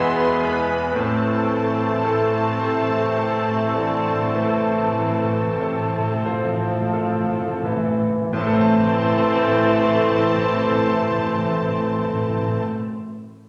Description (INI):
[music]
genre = classical, romantic movement for piano and orchestra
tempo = 28-40 BPM (dotted quarters)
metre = 12/8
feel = rubato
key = A minor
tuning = A4 = 441 Hz
[part]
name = clear chamber violin section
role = melody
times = 0.0-12.6 s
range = A5 to C6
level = -35 LUFS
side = equal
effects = none
[part]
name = clear concert grand piano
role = melody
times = 0.0-13.5 s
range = E2 to A5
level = -28 LUFS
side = equal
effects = none
[part]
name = clear clarinet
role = second line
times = 0.0-12.6 s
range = B4 to C5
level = -34 LUFS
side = equal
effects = none
[part]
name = mellow cor anglais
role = second line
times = 0.0-12.6 s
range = A3 to A4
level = -34 LUFS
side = equal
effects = none
[part]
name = rich chamber violin section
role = second line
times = 0.0-12.6 s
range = none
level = barely audible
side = none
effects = none
[part]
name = silver concert flute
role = second line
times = 0.0-12.6 s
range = G#5 to C6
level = -33 LUFS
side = equal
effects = none
[part]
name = mellow bassoon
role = accompaniment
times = 0.0-12.7 s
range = C3 to F3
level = -28 LUFS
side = equal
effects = none
[part]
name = rich chamber viola section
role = accompaniment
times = 0.0-12.6 s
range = A3 to A4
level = -30 LUFS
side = equal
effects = none
[part]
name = clear trombone section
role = sustained chords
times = 0.0-12.6 s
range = B2 to A3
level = -31 LUFS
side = equal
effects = none
[part]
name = dark French horn section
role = sustained chords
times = 0.0-12.7 s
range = B3 to E4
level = -32 LUFS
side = equal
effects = none
[part]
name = mellow trumpet section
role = stabs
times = 0.0-12.6 s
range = A4 to B4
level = -32 LUFS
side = equal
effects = none
[part]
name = bright studio double bass section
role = bass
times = 0.0-12.7 s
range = E1 to A1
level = -35 LUFS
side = equal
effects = none
[part]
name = rich symphonic cello section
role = bass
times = 0.0-12.6 s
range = E2 to A2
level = -36 LUFS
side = equal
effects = none
[part]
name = timpani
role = percussion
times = 1.0-12.7 s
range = A2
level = -29 LUFS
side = equal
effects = none
[sound]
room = wet scoring stage reverb, RT60 1.5 s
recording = none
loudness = -21 LUFS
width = mono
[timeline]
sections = 0.0-8.3 A section; 8.3-13.5 B section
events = slowing down 0.0-8.3; timpani fill 1.0-8.3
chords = 0.0 E; 1.0 Am